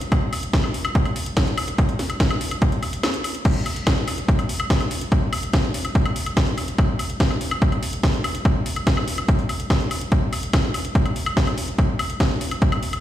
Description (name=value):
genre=trance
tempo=144 BPM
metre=4/4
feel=straight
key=none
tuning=none
part: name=techno drum kit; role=drums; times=0.0-13.0 s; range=crash cymbal, hi-hat, snare drum, woodblock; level=-25 LUFS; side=left 1 dB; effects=small room reverb
part: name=electronic kick drum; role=drums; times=0.1-12.7 s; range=none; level=-20 LUFS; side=equal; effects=small room reverb
room=moderate lush hall reverb, RT60 1.9 s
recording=played on a big sound system in a bare room, large studio reverb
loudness=-19 LUFS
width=side -12 dB against mid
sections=0.0-3.5 A section; 3.5-13.0 B section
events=kick drops out 3.0-3.5; drop 3.5-13.0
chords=none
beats=| 0.12 0.54 0.95 1.37 | 1.78 2.20 2.62 3.04 | 3.45 3.87 4.29 4.70 | 5.12 5.54 5.95 6.37 | 6.79 7.20 7.62 8.04 | 8.45 8.87 9.29 9.70 | 10.12 10.54 10.95 11.37 | 11.79 12.20 12.62